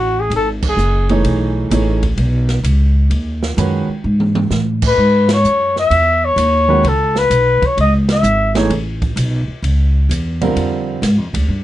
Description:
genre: modal jazz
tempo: 129 BPM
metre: 4/4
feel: swing 67% on 8ths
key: G# phrygian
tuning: A4 = 439 Hz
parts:
  - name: mellow trumpet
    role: melody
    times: 0.0-1.1, 4.9-8.5 s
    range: F#4 to E5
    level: -14 LUFS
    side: left 2 dB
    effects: none
  - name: upright bass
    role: bass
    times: 0.0-11.6 s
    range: F#1 to A2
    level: -16 LUFS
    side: equal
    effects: none
  - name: open jazz drum kit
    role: drums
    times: 0.3-11.4 s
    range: crash cymbal, hi-hat, kick drum, ride cymbal, snare drum, toms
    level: -24 LUFS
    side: right 2 dB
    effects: none
  - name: warm grand piano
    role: accompaniment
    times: 1.1-3.9, 6.7-11.0 s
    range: D3 to C#5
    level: -17 LUFS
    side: right 3 dB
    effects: none
room: light reverb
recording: nothing above 10.9 kHz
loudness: -13 LUFS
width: side -14 dB against mid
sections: 0.0-11.6 A section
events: band accent 0.6, 5.2, 8.0; drum fill 4.0-4.5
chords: 0.0 G#m7; 5.0 A; 10.6 A#7

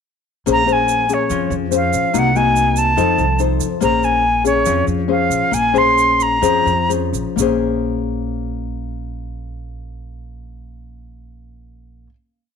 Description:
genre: bossa nova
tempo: 122-144 BPM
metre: 4/4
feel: straight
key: Bb minor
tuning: A4 = 440 Hz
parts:
  - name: bright silver concert flute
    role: melody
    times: 0.5-6.9 s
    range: Db5 to C6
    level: -16 LUFS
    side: right 1 dB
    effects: none
  - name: nylon-string guitar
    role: accompaniment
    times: 0.5-12.1 s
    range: C3 to C5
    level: -18 LUFS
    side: left 8 dB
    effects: none
  - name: upright bass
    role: bass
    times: 0.5-12.1 s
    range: Bb1 to F2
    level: -24 LUFS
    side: right 3 dB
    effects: none
  - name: tube shaker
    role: percussion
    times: 0.5-7.5 s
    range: none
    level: -29 LUFS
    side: right 23 dB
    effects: none
room: moderate echo chamber reverb, RT60 1.3 s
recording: 1960s-style stereo with parts hard left and right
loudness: -14 LUFS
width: side -6 dB against mid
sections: 0.5-7.4 A section; 7.4-11.3 final chord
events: slowing down 3.8-7.4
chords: 0.5 Bbm9; 2.1 Cm7b5; 3.0 F7; 3.8 Bbm9

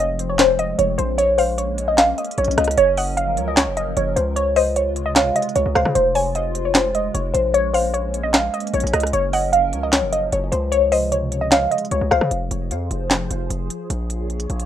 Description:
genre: hip hop, trap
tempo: 151 BPM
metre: 4/4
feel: half-time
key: F phrygian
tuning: A4 = 440 Hz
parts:
  - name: warbly dusty pluck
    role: melody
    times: 0.0-12.3 s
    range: C5 to F5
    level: -19 LUFS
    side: equal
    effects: chorus, phaser, ping-pong delay
  - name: mallet-like synth pluck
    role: second line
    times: 0.0-12.3 s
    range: C5 to Ab5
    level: -26 LUFS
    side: left 1 dB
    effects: chorus, ping-pong delay
  - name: hollow soft pad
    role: sustained chords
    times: 0.0-14.7 s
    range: C3 to Db5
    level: -30 LUFS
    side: equal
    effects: ensemble chorus, phaser
  - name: distorted 808-style bass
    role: bass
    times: 0.0-14.7 s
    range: F1 to Db3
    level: -24 LUFS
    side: equal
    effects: distortion
  - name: trap drum kit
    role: drums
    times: 0.2-14.7 s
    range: handclaps, hi-hat, rim click, snare drum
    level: -21 LUFS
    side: equal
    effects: none
room: light reverb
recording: rough home demo mix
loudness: -17 LUFS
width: side -10 dB against mid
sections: 0.0-12.3 A section; 12.3-14.7 B section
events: none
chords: 0.0 Fm; 1.2 Bbm7; 2.8 Gbmaj7; 4.4 Dbmaj7; 6.0 Fm; 7.5 Bbm7; 9.1 Gbmaj7; 10.7 Dbmaj7; 12.3 Fm; 13.9 Bbm7

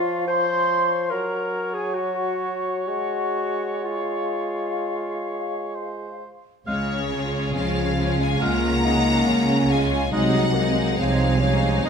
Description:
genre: classical, slow romantic movement for symphony orchestra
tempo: 62-74 BPM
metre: 4/4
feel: rubato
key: Db major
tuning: A4 = 440 Hz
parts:
  - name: large flute ensemble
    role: second line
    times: 0.0-11.9 s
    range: Ab4 to C6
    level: -28 LUFS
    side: left 2 dB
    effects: none
  - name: mellow cor anglais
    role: second line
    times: 0.0-11.9 s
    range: C5 to F5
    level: -32 LUFS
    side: right 3 dB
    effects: none
  - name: warm clarinet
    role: second line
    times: 0.0-11.9 s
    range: Ab3 to C5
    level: -28 LUFS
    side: left 3 dB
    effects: none
  - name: mellow bassoon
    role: accompaniment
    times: 0.0-11.9 s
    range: F3 to F4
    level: -29 LUFS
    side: right 3 dB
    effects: none
  - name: rich studio violin section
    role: melody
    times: 6.7-11.9 s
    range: Db5 to Bb5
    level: -28 LUFS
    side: left 3 dB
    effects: none
  - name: mellow French horn section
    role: sustained chords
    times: 6.7-11.9 s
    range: Db3 to Bb3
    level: -25 LUFS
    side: left 4 dB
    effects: none
  - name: rich symphonic cello section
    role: bass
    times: 6.7-11.9 s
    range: C3 to Db3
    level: -26 LUFS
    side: right 2 dB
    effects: none
  - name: rich symphonic double bass section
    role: bass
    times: 6.7-11.9 s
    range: C2 to Db2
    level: -26 LUFS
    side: right 3 dB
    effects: none
  - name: rich symphonic violin section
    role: second line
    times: 7.1-11.9 s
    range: Eb4 to Ab4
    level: -31 LUFS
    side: equal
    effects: none
  - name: rich symphonic viola section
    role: accompaniment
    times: 7.1-11.9 s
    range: Ab3 to Eb4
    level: -28 LUFS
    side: right 2 dB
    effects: none
room: moderate scoring stage reverb, RT60 1.6 s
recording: close, detailed microphones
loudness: -20 LUFS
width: side -6 dB against mid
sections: 0.0-6.7 A section; 6.7-11.9 B section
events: none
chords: 0.0 Db/F; 1.1 Gbadd9; 2.9 Db/Ab; 6.7 Db; 10.1 Ab7/C

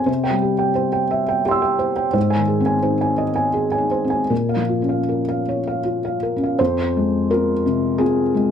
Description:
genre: neoclassical minimalist piano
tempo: 77-89 BPM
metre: 3/4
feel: rubato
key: F minor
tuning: A4 = 440 Hz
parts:
  - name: felt-muted upright piano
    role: solo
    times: 0.0-8.5 s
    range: F2 to E6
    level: -17 LUFS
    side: equal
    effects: none
room: light reverb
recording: none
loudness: -17 LUFS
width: side -8 dB against mid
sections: 0.0-6.6 A section; 6.6-8.5 B section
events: none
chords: 0.1 C; 2.2 Ab; 4.3 Bbm; 6.6 Fm

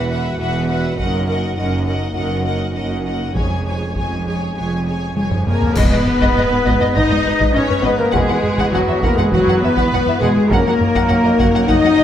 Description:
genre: cinematic, epic orchestral film score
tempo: 101 BPM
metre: 4/4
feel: straight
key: G# minor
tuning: A4 = 440 Hz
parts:
  - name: rich symphonic violin section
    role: melody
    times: 0.0-12.0 s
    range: B4 to G#5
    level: -24 LUFS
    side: left 3 dB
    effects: none
  - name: warm symphonic violin section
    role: second line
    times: 0.0-12.0 s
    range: F#4 to E5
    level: -27 LUFS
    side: left 2 dB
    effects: none
  - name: rich symphonic viola section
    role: accompaniment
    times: 0.0-12.0 s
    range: F#3 to B4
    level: -23 LUFS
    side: right 1 dB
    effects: none
  - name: dark French horn section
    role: sustained chords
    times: 0.0-12.0 s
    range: F#3 to F#4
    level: -20 LUFS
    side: left 3 dB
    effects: none
  - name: clear symphonic double bass section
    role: bass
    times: 0.0-12.0 s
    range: E1 to G#1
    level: -24 LUFS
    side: right 2 dB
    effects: none
  - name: rich symphonic cello section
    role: bass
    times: 0.0-12.0 s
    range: E2 to G#2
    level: -23 LUFS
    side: right 2 dB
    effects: none
  - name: taiko ensemble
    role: drums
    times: 1.0-12.0 s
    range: none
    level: -21 LUFS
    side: equal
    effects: none
  - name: cymbal swell, clash cymbals and concert bass drum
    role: percussion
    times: 3.4-6.9 s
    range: none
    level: -25 LUFS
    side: equal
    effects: none
  - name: mellow flute section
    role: second line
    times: 5.5-12.0 s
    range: F#4 to D#5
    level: -23 LUFS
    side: equal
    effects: none
  - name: warm woodwind section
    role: sustained chords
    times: 5.8-12.0 s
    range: A#3 to C#5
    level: -25 LUFS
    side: equal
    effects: none
room: wet recital hall reverb, RT60 1.4 s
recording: none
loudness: -14 LUFS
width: side -10 dB against mid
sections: 0.0-5.8 A section; 5.8-12.0 B section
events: drum fill 5.2-5.8; band accent 5.8-6.4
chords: 0.0 Esus2; 1.0 F#6; 3.4 C#/E#; 5.8 G#m; 8.1 Esus2; 10.5 F#6

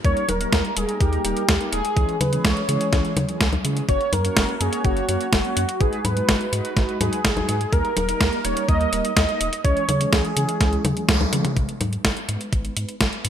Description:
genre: italo disco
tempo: 125 BPM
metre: 4/4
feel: straight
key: G# minor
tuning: A4 = 445 Hz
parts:
  - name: wide unison lead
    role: melody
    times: 0.0-11.3 s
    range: F#4 to D#5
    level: -25 LUFS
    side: equal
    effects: cassette tape, ping-pong delay
  - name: mellow synth brass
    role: stabs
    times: 0.0-13.3 s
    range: E3 to C#5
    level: -28 LUFS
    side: right 2 dB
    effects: chorus
  - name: round analog bass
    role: bass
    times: 0.0-13.3 s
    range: D#1 to C#3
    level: -25 LUFS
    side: equal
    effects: none
  - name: clean 12-bit digital drum machine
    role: drums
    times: 0.0-13.3 s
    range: congas, hi-hat, snare drum, toms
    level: -23 LUFS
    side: equal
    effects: overdrive
  - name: electronic kick drum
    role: drums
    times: 0.0-13.1 s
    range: none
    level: -22 LUFS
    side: equal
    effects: overdrive
room: moderate plate reverb, RT60 1.9 s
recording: bright 1980s-style digital production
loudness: -19 LUFS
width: side -9 dB against mid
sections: 0.0-11.6 A section; 11.6-13.3 B section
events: band accent 11.1; drum fill 11.3; filter sweep on analog polysynth 11.6-13.3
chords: 0.0 D#; 2.0 C#m; 3.9 F#; 5.8 G#m7; 7.7 D#; 9.6 C#m; 11.6 G#m

